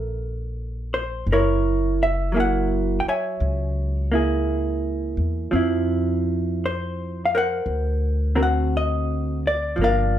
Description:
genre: jazz ballad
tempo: 56 BPM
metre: 4/4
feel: swing 67% on 8ths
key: unclear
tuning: A4 = 442 Hz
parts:
  - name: vintage hollow-body jazz guitar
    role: accompaniment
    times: 0.0-10.2 s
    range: D3 to Ab5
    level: -22 LUFS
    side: right 1 dB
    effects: plate reverb
  - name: upright bass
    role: bass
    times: 0.0-10.2 s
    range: Gb1 to F2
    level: -24 LUFS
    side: equal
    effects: none
room: moderate studio ambience, RT60 0.5 s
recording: rough home demo mix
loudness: -20 LUFS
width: side -10 dB against mid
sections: 0.0-10.2 A section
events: none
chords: 0.0 Gmadd9; 1.3 Gb9; 5.5 F5; 7.7 Daug7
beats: 0.20 | 1.28 2.35 3.41 4.48 | 5.54 6.60 7.66 8.73 | 9.79

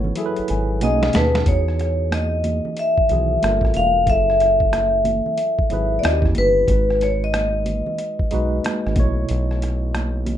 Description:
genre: R&B, neo-soul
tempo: 92 BPM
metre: 4/4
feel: swing 64% on 16ths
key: unclear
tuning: A4 = 440 Hz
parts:
  - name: vibraphone with medium hard mallets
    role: melody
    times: 0.0-10.4 s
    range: B4 to F#5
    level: -20 LUFS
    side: left 1 dB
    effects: plate reverb
  - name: tine electric piano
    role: accompaniment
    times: 0.0-10.4 s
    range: B2 to A5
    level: -26 LUFS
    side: right 1 dB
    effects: fast stereo tremolo, plate reverb
  - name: round analog bass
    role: bass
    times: 0.0-10.4 s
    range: E1 to E2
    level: -22 LUFS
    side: equal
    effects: none
  - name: congas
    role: percussion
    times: 0.0-10.4 s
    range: none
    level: -29 LUFS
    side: right 2 dB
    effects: none
  - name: boom bap sampler-style drum kit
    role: drums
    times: 0.2-10.4 s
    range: hi-hat, kick drum, rim click, snare drum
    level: -23 LUFS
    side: equal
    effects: none
room: moderate studio ambience, RT60 0.5 s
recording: rough home demo mix, nothing above 10.6 kHz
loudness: -17 LUFS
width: side -10 dB against mid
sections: 0.0-1.5 A section; 1.5-10.4 B section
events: drum fill 0.0-1.5; tine electric piano fill 0.0-1.5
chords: 0.0 F#m9; 0.8 B13; 1.5 Emaj9; 3.4 Gm9; 4.1 F#m9; 6.0 D#7b9; 6.7 G#m7; 9.0 B9sus4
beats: 0.16 0.81 | 1.46 2.11 2.77 3.42 | 4.07 4.72 5.37 6.03 | 6.68 7.33 7.98 8.63 | 9.29 9.94

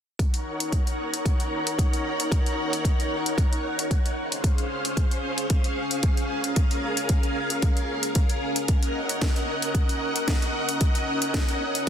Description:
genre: nu-disco, nu disco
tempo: 113 BPM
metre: 4/4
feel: swing 54% on 16ths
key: Eb dorian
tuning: A4 = 443 Hz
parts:
  - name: string machine, full ensemble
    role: sustained chords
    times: 0.2-11.9 s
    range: Db4 to Gb5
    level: -27 LUFS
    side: equal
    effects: ensemble chorus, sidechain pumping
  - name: electronic kick drum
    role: drums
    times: 0.2-11.9 s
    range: none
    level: -23 LUFS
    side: equal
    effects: none
  - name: house drum kit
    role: drums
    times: 0.2-11.9 s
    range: hi-hat, snare drum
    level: -30 LUFS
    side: left 1 dB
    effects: none
room: light reverb, digital ambience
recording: dense, heavily limited modern master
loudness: -22 LUFS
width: side -9 dB against mid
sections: 0.2-11.9 A section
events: none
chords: 0.2 Ebm7; 4.2 Dbmaj7; 8.7 Ebm7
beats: | 0.19 0.72 1.25 1.78 | 2.32 2.85 3.38 3.91 | 4.44 4.97 5.50 6.03 | 6.56 7.09 7.63 8.16 | 8.69 9.22 9.75 10.28 | 10.81 11.34 11.87

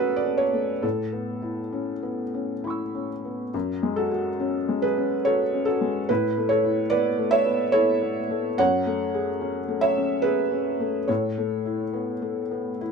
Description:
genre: neoclassical minimalist piano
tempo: 66-74 BPM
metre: 3/4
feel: rubato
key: F# minor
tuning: A4 = 439 Hz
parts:
  - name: felt-muted upright piano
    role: solo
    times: 0.0-12.9 s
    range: F#2 to E6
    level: -22 LUFS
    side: equal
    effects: none
room: moderate studio reverb, RT60 0.7 s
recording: minimal, uncompressed stereo recording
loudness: -22 LUFS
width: side -5 dB against mid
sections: 0.0-3.5 A section; 3.5-12.9 B section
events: none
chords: 0.0 F#m; 0.8 Aadd9; 3.5 F#madd9; 6.1 Aadd9; 8.6 F#madd9; 11.1 Aadd9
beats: | 0.83 1.73 2.64 | 3.54 4.40 5.25 | 6.09 6.91 7.73 | 8.59 9.41 10.24 | 11.09 11.95 12.81

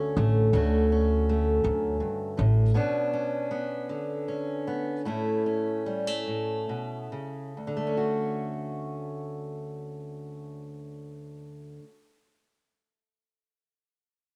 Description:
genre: acoustic folk duo or small band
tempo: 44-54 BPM (dotted quarters)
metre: 6/8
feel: straight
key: D major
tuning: A4 = 441 Hz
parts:
  - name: fingerpicked steel-string acoustic guitar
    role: accompaniment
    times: 0.0-12.0 s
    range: D2 to F#4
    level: -31 LUFS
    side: equal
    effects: cassette tape
  - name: upright bass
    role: bass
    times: 0.2-2.7 s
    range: A1 to D2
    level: -26 LUFS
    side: equal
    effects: none
room: light reverb, studio ambience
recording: home recording on cassette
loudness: -28 LUFS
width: mono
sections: 0.0-7.6 A section; 7.6-10.3 B section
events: slowing down 2.8-7.6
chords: 0.0 Dmaj7; 2.8 Bmadd9; 5.0 A; 7.6 Dmaj7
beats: | 0.53 1.64 | 2.76 3.88 | 5.04 6.26 | 7.57 8.92

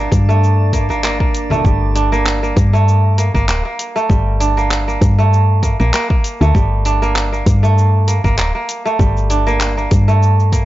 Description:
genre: organic downtempo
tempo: 98 BPM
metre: 4/4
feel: swing 55% on 16ths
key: G minor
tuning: A4 = 442 Hz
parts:
  - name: kora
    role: arpeggios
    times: 0.0-10.7 s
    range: G3 to D4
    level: -18 LUFS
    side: right 3 dB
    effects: tape echo
  - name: woody FM bass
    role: bass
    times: 0.0-10.7 s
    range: D1 to G2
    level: -14 LUFS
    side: equal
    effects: sidechain pumping
  - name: drifting glass-harmonics texture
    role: texture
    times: 0.0-1.7 s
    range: D4 to D5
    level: -27 LUFS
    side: right 1 dB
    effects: chorus, built-in reverb
  - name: deep house drum kit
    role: drums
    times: 0.1-10.7 s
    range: cabasa, handclaps, hi-hat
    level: -23 LUFS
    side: equal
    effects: overdrive
  - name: electronic kick drum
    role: drums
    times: 0.1-10.7 s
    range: none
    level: -16 LUFS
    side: equal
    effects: none
  - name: congas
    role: percussion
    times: 0.1-1.6 s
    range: none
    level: -24 LUFS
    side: left 1 dB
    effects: none
room: digital ambience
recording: dry, gritty hardware recording, transformer saturation, nothing above 7.6 kHz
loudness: -12 LUFS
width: side -15 dB against mid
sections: 0.0-1.6 A section; 1.6-10.7 B section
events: none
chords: 0.0 Gmadd9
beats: 0.42 1.04 | 1.65 2.26 2.87 3.48 | 4.10 4.71 5.32 5.93 | 6.55 7.16 7.77 8.38 | 8.99 9.61 10.22

